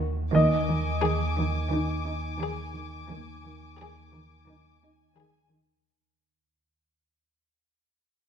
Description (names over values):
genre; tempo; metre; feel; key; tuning
cinematic; 87 BPM; 4/4; straight; unclear; A4 = 440 Hz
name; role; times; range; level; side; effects
warm chamber violin section; melody; 0.0-5.7 s; Gb4 to Ab4; -33 LUFS; left 3 dB; none
dark chamber cello section; riff; 0.0-5.7 s; Eb3 to Eb4; -31 LUFS; right 2 dB; none
deep rumbling drone; drone; 0.0-5.8 s; Eb2; -32 LUFS; right 1 dB; built-in reverb
bright baby grand piano; texture; 0.0-5.9 s; Eb5; -29 LUFS; left 1 dB; none
clear chamber double bass section; bass; 0.3-3.6 s; Eb2; -31 LUFS; equal; none
dark chamber cello section; bass; 0.3-5.0 s; Eb3; -29 LUFS; right 4 dB; none
dark studio violin section; texture; 0.3-5.5 s; Ab5 to D6; -37 LUFS; left 3 dB; none
room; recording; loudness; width
moderate scoring stage reverb, RT60 1.6 s; minimal, uncompressed stereo recording; -24 LUFS; side -8 dB against mid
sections
0.0-5.8 A section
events
fade-out 0.0-5.8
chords
0.3 Ab5/Eb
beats
| 0.33 1.02 1.71 2.40 | 3.08 3.77 4.46 5.15